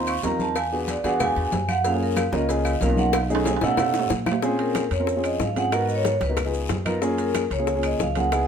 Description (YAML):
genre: Afro-Cuban jazz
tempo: 186 BPM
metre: 4/4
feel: straight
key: unclear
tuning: A4 = 440 Hz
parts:
  - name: vibraphone with medium hard mallets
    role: melody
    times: 0.0-8.5 s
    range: Bb4 to Db6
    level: -25 LUFS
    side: right 2 dB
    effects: none
  - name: warm concert grand piano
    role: accompaniment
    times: 0.0-8.5 s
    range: A3 to C5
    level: -26 LUFS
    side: equal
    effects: none
  - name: upright bass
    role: bass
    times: 0.0-8.5 s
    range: Cb2 to B2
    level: -28 LUFS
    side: left 1 dB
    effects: none
  - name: agogo bells and timbales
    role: percussion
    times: 0.1-8.5 s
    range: none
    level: -31 LUFS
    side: right 6 dB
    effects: none
  - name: claves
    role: percussion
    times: 0.1-8.5 s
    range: none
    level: -37 LUFS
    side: left 8 dB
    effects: none
  - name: congas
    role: percussion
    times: 0.1-8.5 s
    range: none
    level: -32 LUFS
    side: left 1 dB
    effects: none
  - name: cowbell and bongos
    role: percussion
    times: 0.1-8.5 s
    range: none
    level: -30 LUFS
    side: left 6 dB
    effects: none
  - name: maracas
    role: percussion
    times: 0.1-8.5 s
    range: none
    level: -43 LUFS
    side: right 5 dB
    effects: none
  - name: guiro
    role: percussion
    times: 0.2-8.5 s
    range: none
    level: -40 LUFS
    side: left 7 dB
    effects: none
room: light reverb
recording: minimal, uncompressed stereo recording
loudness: -21 LUFS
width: side -7 dB against mid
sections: 0.0-4.4 A section; 4.4-8.5 B section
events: vibraphone solo 0.0-4.4; drum fill 3.1-4.4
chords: 0.0 Ab6 (rootless); 0.6 E9; 1.8 Gbmaj9; 3.1 B13; 4.4 Bbm7; 5.7 Abm7; 6.4 Db9; 7.0 Gbmaj7